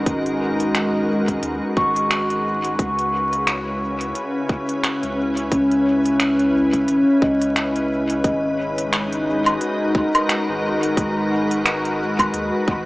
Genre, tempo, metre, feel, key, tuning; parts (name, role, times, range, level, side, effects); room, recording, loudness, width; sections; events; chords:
ambient dub; 88 BPM; 4/4; swing 57% on 16ths; G# minor; A4 = 439 Hz
soft additive organ-like pad; sustained chords; 0.0-12.9 s; C#3 to B4; -21 LUFS; equal; ensemble chorus, built-in reverb
vibraphone with soft mallets; arpeggios; 0.0-12.9 s; C#4 to C#6; -22 LUFS; equal; tape echo
warm sub bass; bass; 0.0-12.9 s; G#1 to D#2; -32 LUFS; equal
electronic kick drum; drums; 0.1-12.8 s; -22 LUFS; equal
organic electronic drum kit; drums; 0.1-12.5 s; finger snaps, hi-hat, woodblock; -23 LUFS; equal; dub echo
moderate echo chamber reverb, RT60 2.3 s; vinyl crackle, small speaker sound; -18 LUFS; side -20 dB against mid
0.0-8.2 A section; 8.2-12.9 B section
0.0 G#m7; 2.8 C#m7; 8.2 G#m7